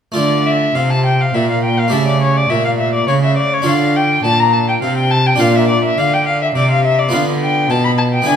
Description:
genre	classical, baroque-style sonata movement with continuo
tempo	104 BPM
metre	3/4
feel	straight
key	D minor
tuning	A4 = 438 Hz
part	harpsichord	accompaniment	0.1-8.4 s	Bb2 to B4	-18 LUFS	right 1 dB	none
part	warm violin	melody	0.2-8.4 s	C#5 to B5	-15 LUFS	left 3 dB	none
part	rich cello	bass	0.2-8.4 s	Bb2 to D3	-17 LUFS	right 2 dB	none
room	moderate recital hall reverb, RT60 1.4 s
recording	minimal, uncompressed stereo recording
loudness	-12 LUFS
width	side -8 dB against mid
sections	0.2-8.4 A section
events	none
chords	0.2 Dm; 1.9 A7; 3.7 Dm; 5.4 Bb; 7.1 Bdim/D

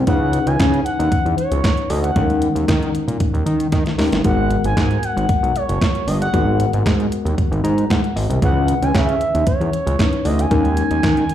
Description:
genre	early-eighties boogie funk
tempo	115 BPM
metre	4/4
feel	straight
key	G# minor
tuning	A4 = 440 Hz
part	tine electric piano	accompaniment	0.0-11.3 s	D#3 to A#5	-23 LUFS	left 3 dB	medium stereo tremolo, slapback echo
part	fat analog bass	bass	0.0-11.2 s	F#1 to D#3	-18 LUFS	equal	none
part	expressive synth lead	melody	0.1-11.3 s	C#5 to G#5	-23 LUFS	equal	chorus, slapback echo, tape echo
part	crisp 8-bit digital drum machine	drums	0.1-11.3 s	handclaps, hi-hat, kick drum, snare drum	-20 LUFS	equal	overdrive
room	little or no reverb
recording	live gig heard through the venue's PA, club reverb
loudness	-15 LUFS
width	side -11 dB against mid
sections	0.0-11.3 A section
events	drum fill 3.7-4.2; tine electric piano fill 7.4-8.4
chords	0.1 C#m9; 2.2 D#7sus4; 4.2 G#m9; 8.4 C#m9; 10.5 D#7sus4

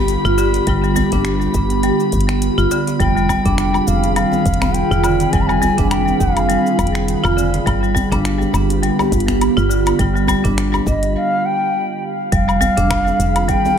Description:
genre	organic downtempo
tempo	103 BPM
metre	4/4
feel	swing 56% on 16ths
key	G phrygian dominant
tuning	A4 = 438 Hz
part	ethereal airy pad	sustained chords	0.0-13.8 s	D3 to Ab4	-21 LUFS	right 1 dB	ensemble chorus, built-in reverb, sidechain pumping
part	woody FM bass	bass	0.0-13.6 s	F1 to G1	-19 LUFS	equal	none
part	drifting glass-harmonics texture	texture	0.0-13.8 s	B5	-30 LUFS	left 4 dB	chorus, built-in reverb
part	afro-pop drum kit	drums	0.1-13.8 s	cabasa, finger snaps, hi-hat, woodblock	-25 LUFS	left 3 dB	studio reverb
part	marimba with hard mallets	arpeggios	0.2-13.6 s	D3 to F4	-20 LUFS	right 1 dB	vintage 12-bit sampler grit, tape echo
part	djembe	percussion	0.5-13.8 s	none	-27 LUFS	right 1 dB	none
part	electronic kick drum	drums	0.7-13.6 s	none	-22 LUFS	equal	studio reverb
part	bright bansuri	melody	3.0-7.1, 10.9-13.8 s	Eb5 to B5	-20 LUFS	left 1 dB	dub echo
room	light reverb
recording	echo-heavy mix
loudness	-14 LUFS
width	side -8 dB against mid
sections	0.0-12.3 A section; 12.3-13.8 B section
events	break 11.2-12.3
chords	0.0 G7; 3.0 Fm7; 7.7 G7; 12.3 Fm7

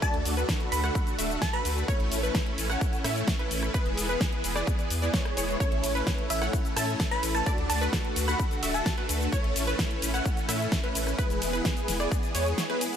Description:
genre	EDM, festival progressive house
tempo	129 BPM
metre	4/4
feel	straight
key	A major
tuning	A4 = 440 Hz
part	glassy wavetable pluck	melody	0.0-1.9, 6.3-9.2 s	E5 to B5	-33 LUFS	equal	chorus, digital delay
part	lush unison pad	sustained chords	0.0-13.0 s	D3 to G#4	-37 LUFS	equal	chorus, sidechain pumping
part	wide unison pluck	arpeggios	0.0-13.0 s	B4 to F#5	-35 LUFS	right 1 dB	sidechain pumping, digital delay
part	supersaw chords	riff	0.0-13.0 s	G#3 to F#5	-32 LUFS	equal	ensemble chorus, cassette tape, sidechain pumping, digital delay
part	big-room dance drum kit	drums	0.0-13.0 s	hi-hat, ride cymbal, rim click, shaker, snare drum	-32 LUFS	equal	none
part	electronic kick drum	drums	0.0-12.2 s	none	-29 LUFS	equal	none
part	saturated sub bass	bass	0.1-12.5 s	D1 to A2	-31 LUFS	equal	sidechain pumping
room	light reverb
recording	none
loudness	-25 LUFS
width	side -8 dB against mid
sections	0.0-13.0 A section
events	kick drops out 12.6-13.0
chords	0.0 D; 1.9 A; 3.7 E; 5.6 A; 7.5 D; 9.3 A; 11.2 E

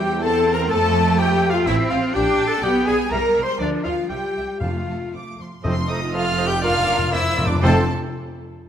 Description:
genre	quick classical-period movement for symphony orchestra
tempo	114-127 BPM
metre	2/4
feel	rubato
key	F major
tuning	A4 = 441 Hz
part	rich chamber violin section	melody	0.0-7.9 s	C5 to G6	-29 LUFS	equal	none
part	bright oboe	second line	0.0-7.8 s	C5 to C6	-30 LUFS	right 1 dB	none
part	rich chamber violin section	second line	0.0-7.9 s	A4 to C6	-31 LUFS	left 2 dB	none
part	silver concert flute	second line	0.0-7.9 s	C5 to C6	-28 LUFS	equal	none
part	warm clarinet	second line	0.0-7.8 s	D4 to C5	-29 LUFS	left 1 dB	none
part	rich symphonic viola section	accompaniment	0.0-7.9 s	C4 to C5	-30 LUFS	equal	none
part	dark French horn section	sustained chords	0.0-7.8 s	A3 to C5	-24 LUFS	left 4 dB	none
part	clear chamber double bass section	bass	0.0-7.9 s	F1 to F2	-25 LUFS	right 4 dB	none
part	clear studio cello section	bass	0.0-7.9 s	F2 to D4	-27 LUFS	right 2 dB	none
part	timpani	percussion	4.6-7.9 s	F2	-24 LUFS	left 1 dB	none
part	mellow bassoon	accompaniment	5.6-7.8 s	A3 to C4	-30 LUFS	right 1 dB	none
part	clear trumpet	stabs	5.6-7.8 s	C4 to A4	-26 LUFS	right 2 dB	none
room	moderate scoring stage reverb, RT60 1.9 s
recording	none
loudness	-17 LUFS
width	side -9 dB against mid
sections	0.0-5.6 A section; 5.6-7.6 B section; 7.6-8.6 C section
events	timpani fill 6.6-7.6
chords	0.0 C/E; 0.7 F; 1.7 F/A; 2.1 Gm/Bb; 2.6 Abmmaj7/Cb; 3.1 C5; 3.6 Dm; 4.1 C; 4.6 F; 5.6 F7; 6.6 Bb/F; 7.6 F

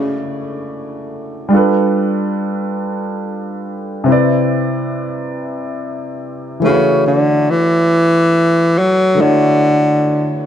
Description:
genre	R&B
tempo	47 BPM (dotted quarters)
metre	6/8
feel	straight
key	D major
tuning	A4 = 444 Hz
part	breathy tenor saxophone	melody	0.0-0.2, 6.6-10.5 s	C#3 to F#3	-12 LUFS	equal	tape echo
part	warm baby grand piano	accompaniment	0.0-10.5 s	C3 to D5	-17 LUFS	equal	none
room	moderate studio reverb, RT60 0.8 s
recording	dark, warm production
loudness	-12 LUFS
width	side -9 dB against mid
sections	0.0-10.5 A section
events	none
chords	0.0 Dmaj9; 1.5 G7; 4.1 Cmaj9; 6.6 Dmaj9

